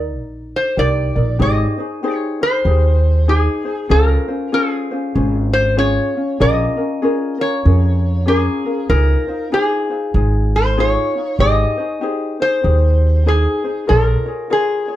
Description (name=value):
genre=Hawaiian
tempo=96 BPM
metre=4/4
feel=swing 61% on 8ths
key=Ab major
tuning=A4 = 441 Hz
part: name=ukulele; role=accompaniment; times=0.0-15.0 s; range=Db4 to D5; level=-21 LUFS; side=left 2 dB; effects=none
part: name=upright bass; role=bass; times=0.0-14.1 s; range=Ab1 to F2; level=-14 LUFS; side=right 1 dB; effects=none
part: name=metal-body resonator slide guitar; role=melody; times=0.6-15.0 s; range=Ab4 to Eb5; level=-19 LUFS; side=left 1 dB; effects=none
room=light reverb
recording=none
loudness=-14 LUFS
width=side -13 dB against mid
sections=0.0-1.4 A section; 1.4-15.0 B section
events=none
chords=0.0 Ebmaj7; 1.4 Abmaj7; 3.9 Dbmaj7; 6.4 Bbm7; 8.9 Dbmaj9; 11.4 Abmaj7; 13.9 Bbm7